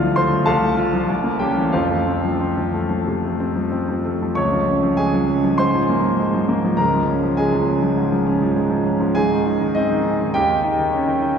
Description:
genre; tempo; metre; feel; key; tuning
classical, virtuoso piano study; 89-105 BPM; 4/4; rubato; F major, Db major from 4.4 s; A4 = 440 Hz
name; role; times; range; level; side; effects
clear concert grand piano; solo; 0.0-11.4 s; C2 to Db6; -17 LUFS; equal; none
room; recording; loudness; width
wet cathedral reverb, RT60 7.0 s; heard from further back in the room; -17 LUFS; side -7 dB against mid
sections
0.0-4.4 A section; 4.4-11.4 B section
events
none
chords
0.5 F/C; 1.1 C7b9; 1.7 F; 4.4 Db; 5.6 Ab69; 6.8 Db; 9.2 Ab; 10.3 Eb7

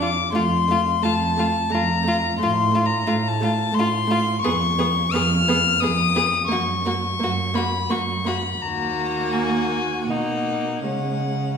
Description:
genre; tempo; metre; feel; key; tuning
classical, slow romantic movement for string quartet; 76-90 BPM; 3/4; rubato; F# major from 4.4 s; A4 = 437 Hz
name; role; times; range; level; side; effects
warm violin; melody; 0.0-11.6 s; F#5 to E#6; -22 LUFS; left 6 dB; none
warm violin; second line; 0.0-11.6 s; C#4 to G#4; -27 LUFS; left 2 dB; none
warm viola; accompaniment; 0.0-11.6 s; G#3 to B3; -26 LUFS; right 3 dB; none
dark cello; bass; 0.0-11.6 s; D#2 to C#3; -25 LUFS; right 3 dB; none
room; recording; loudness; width
wet recital hall reverb, RT60 1.4 s; recorded in a church or concert hall; -19 LUFS; side -6 dB against mid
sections
0.0-11.6 A section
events
none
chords
0.3 F; 2.4 F/A; 4.4 C#7/E#; 6.5 F#; 8.6 D#m; 10.1 Bmaj7; 10.8 C#5

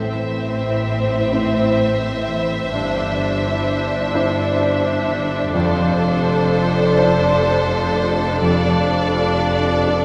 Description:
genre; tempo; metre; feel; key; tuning
cinematic, emotional film score for orchestra; 42 BPM (dotted quarters); 6/8; rubato; A minor; A4 = 439 Hz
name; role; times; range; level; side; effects
rich studio violin section; melody; 0.0-10.0 s; C5 to E5; -27 LUFS; equal; none
warm studio violin section; second line; 0.0-10.0 s; A4 to C5; -27 LUFS; equal; none
warm baby grand piano; accompaniment; 0.0-10.0 s; F2 to D5; -26 LUFS; equal; none
warm symphonic viola section; accompaniment; 0.0-10.0 s; C4 to D4; -27 LUFS; equal; none
concert harp; arpeggios; 0.0-10.0 s; F2 to D5; -26 LUFS; equal; none
clear symphonic cello section; bass; 0.0-10.0 s; F2 to A2; -27 LUFS; equal; none
clear symphonic double bass section; bass; 0.0-10.0 s; F1 to A1; -27 LUFS; equal; none
room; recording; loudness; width
wet recital hall reverb, RT60 1.7 s; recorded in a church or concert hall; -18 LUFS; mono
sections
0.0-10.0 A section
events
none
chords
0.0 Am; 2.7 Cadd9/G; 5.5 F6; 8.4 Dm/F

